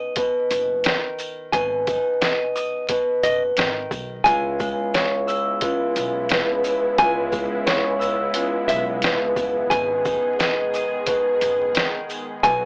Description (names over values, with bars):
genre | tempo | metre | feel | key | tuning
hip hop, boom-bap hip-hop | 88 BPM | 4/4 | swing 61% on 16ths | unclear | A4 = 440 Hz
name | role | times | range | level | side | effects
Celtic harp | accompaniment | 0.0-12.7 s | C#2 to E6 | -24 LUFS | equal | high-pass filter, low-pass filter
boom bap sampler-style drum kit | drums | 0.2-12.6 s | hi-hat, kick drum, shaker, snare drum | -26 LUFS | equal | none
sleigh bells | percussion | 0.2-12.6 s | none | -41 LUFS | equal | none
upright bass | bass | 0.5-12.7 s | F#1 to C#2 | -37 LUFS | equal | transformer saturation
nylon-string guitar | melody | 1.5-12.7 s | D#5 to G#5 | -24 LUFS | equal | high-pass filter, low-pass filter, analog delay
lush unison pad | sustained chords | 4.2-12.7 s | C#3 to G#4 | -33 LUFS | equal | chorus, high-pass filter, low-pass filter
room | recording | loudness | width
little or no reverb | dry, gritty hardware recording, vinyl crackle, AM radio sound | -22 LUFS | mono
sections
0.0-12.7 A section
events
none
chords
0.0 G#m; 4.3 C#m7; 9.7 G#m